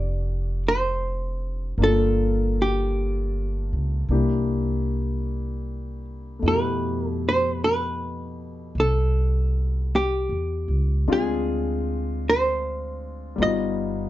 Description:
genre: jazz ballad.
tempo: 52 BPM.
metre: 4/4.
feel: swing 69% on 8ths.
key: unclear.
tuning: A4 = 439 Hz.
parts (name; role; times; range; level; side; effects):
archtop guitar, miked and amplified; melody; 0.0-14.1 s; G4 to D#5; -25 LUFS; right 1 dB; none.
clear concert grand piano; accompaniment; 0.0-14.1 s; B2 to A4; -28 LUFS; left 4 dB; none.
upright bass; bass; 0.0-14.1 s; F1 to F2; -25 LUFS; equal; none.
room: light reverb.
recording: dark, warm production, nothing above 7.7 kHz.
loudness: -22 LUFS.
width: side -14 dB against mid.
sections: 0.0-14.1 A section.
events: none.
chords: 0.0 Bbmaj9 (rootless); 1.8 Gm7; 4.1 C9; 6.4 Fmaj9#11; 11.1 Dm7b5; 13.4 Gaug7.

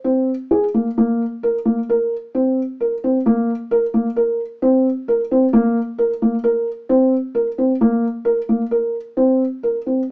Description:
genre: contemporary instrumental, contemporary.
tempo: 132 BPM.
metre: 5/4.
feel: straight.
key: unclear.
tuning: A4 = 440 Hz.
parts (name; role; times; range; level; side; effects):
felt-muted upright piano; solo; 0.0-10.0 s; Bb3 to Bb4; -15 LUFS; equal; none.
room: light reverb.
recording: small speaker sound.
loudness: -16 LUFS.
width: side -27 dB against mid.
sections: 0.0-10.1 A section.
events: none.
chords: none.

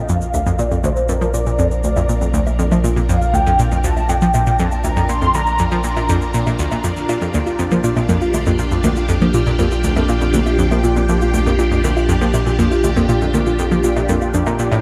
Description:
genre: ambient, sequencer-driven space music.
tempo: 120 BPM.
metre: 4/4.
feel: straight.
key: Bb major.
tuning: A4 = 440 Hz.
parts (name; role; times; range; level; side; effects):
mellow horn-like synth lead; melody; 0.0-6.3 s; Bb4 to C6; -24 LUFS; equal; ensemble chorus, tape echo.
phased string machine; sustained chords; 0.0-14.8 s; D4 to Bb4; -26 LUFS; equal; ensemble chorus, phaser.
warm sub bass; bass; 0.0-14.8 s; Bb1; -22 LUFS; equal; none.
pulsing gated texture; texture; 0.0-14.8 s; D5; -39 LUFS; equal; none.
analog pluck; riff; 0.1-14.8 s; D2 to F3; -21 LUFS; equal; chorus, tape echo.
cabasa and woodblock; percussion; 0.1-14.8 s; none; -34 LUFS; equal; tape echo.
soft round pluck; arpeggios; 7.1-14.7 s; Bb3 to Bb5; -23 LUFS; equal; chorus, tape echo.
room: wet cathedral reverb, RT60 5.1 s.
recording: dreamy mix soaked in reverb.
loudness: -17 LUFS.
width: mono.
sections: 0.0-14.8 A section.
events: fade-in on string machine 0.0-14.8.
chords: 0.0 Bb.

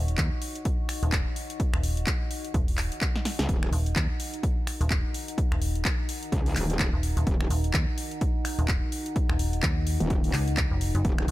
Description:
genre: bass house.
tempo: 127 BPM.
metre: 4/4.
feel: swing 58% on 16ths.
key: Eb minor.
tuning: A4 = 440 Hz.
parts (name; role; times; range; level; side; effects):
dark analog pad; sustained chords; 0.0-11.3 s; Eb4 to Db6; -37 LUFS; left 1 dB; wide subtle chorus, sidechain pumping.
metallic FM bass; bass; 0.0-11.3 s; Eb1 to Eb2; -26 LUFS; equal; tube saturation, sidechain pumping.
house drum kit; drums; 0.1-11.3 s; finger snaps, handclaps, hi-hat, snare drum; -32 LUFS; equal; none.
electronic kick drum; drums; 0.2-11.2 s; none; -28 LUFS; equal; none.
metallic wobble bass; bass; 3.4-11.3 s; Eb1 to Db2; -28 LUFS; equal; distortion, chorus, overdrive, sidechain pumping.
room: little or no reverb.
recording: none.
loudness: -24 LUFS.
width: side -16 dB against mid.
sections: 0.0-11.3 A section.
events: drum fill 3.1-3.5.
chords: 0.0 Ebm.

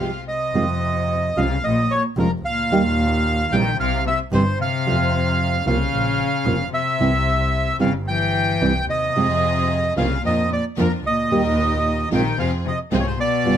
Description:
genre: tango.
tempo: 112 BPM.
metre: 4/4.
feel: rubato.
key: F minor.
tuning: A4 = 440 Hz.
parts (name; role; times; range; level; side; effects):
bandoneon; melody; 0.0-13.6 s; Bb4 to G5; -22 LUFS; right 2 dB; none.
warm cello; second line; 0.0-13.6 s; F2 to E3; -24 LUFS; left 5 dB; none.
nylon-string guitar; accompaniment; 0.0-13.5 s; C3 to G4; -21 LUFS; right 3 dB; none.
rich symphonic string section; stabs; 0.0-0.2, 9.2-13.6 s; Ab3 to Bb4; -31 LUFS; equal; none.
rich double bass; bass; 0.5-13.6 s; F1 to F2; -24 LUFS; right 1 dB; none.
room: light reverb.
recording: none.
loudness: -18 LUFS.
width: side -9 dB against mid.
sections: 0.5-13.6 A section.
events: break 0.0-0.5.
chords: 0.0 Fmadd9; 0.5 Fm7; 1.6 Bbm; 2.7 Eb; 3.8 C; 4.9 F5; 5.9 Bbm; 7.0 C; 9.2 Fm; 10.2 Bb/F; 11.3 Eb; 12.4 Fm.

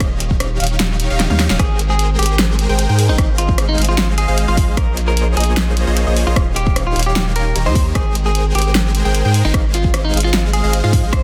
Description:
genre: future bass.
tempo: 151 BPM.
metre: 4/4.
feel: swing 53% on 16ths, half-time.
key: Ab major.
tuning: A4 = 440 Hz.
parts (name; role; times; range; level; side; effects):
unison pluck; arpeggios; 0.0-11.2 s; Eb5 to Bb5; -31 LUFS; equal; sidechain pumping.
supersaw chords; riff; 0.0-11.2 s; Eb3 to Bb5; -25 LUFS; equal; sidechain pumping.
saturated sub bass; bass; 0.0-11.2 s; Eb1 to Ab2; -19 LUFS; equal; sidechain pumping.
electronic kick drum; drums; 0.0-11.2 s; none; -19 LUFS; equal; none.
pop drum kit; drums; 0.0-11.2 s; hi-hat, rim click, snare drum, toms; -23 LUFS; equal; none.
clean electric guitar; melody; 1.6-11.2 s; Eb4 to C5; -25 LUFS; equal; sidechain pumping, tape echo.
room: light reverb.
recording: dense, heavily limited modern master.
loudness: -16 LUFS.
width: mono.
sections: 0.0-11.2 A section.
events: kick drops out 0.8-1.6; drum fill 1.2-1.6.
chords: 0.0 Eb9; 1.6 Abmaj9; 3.2 Ab6; 4.8 Bbm11; 6.4 Eb9; 8.0 Abmaj9; 9.5 Ab6.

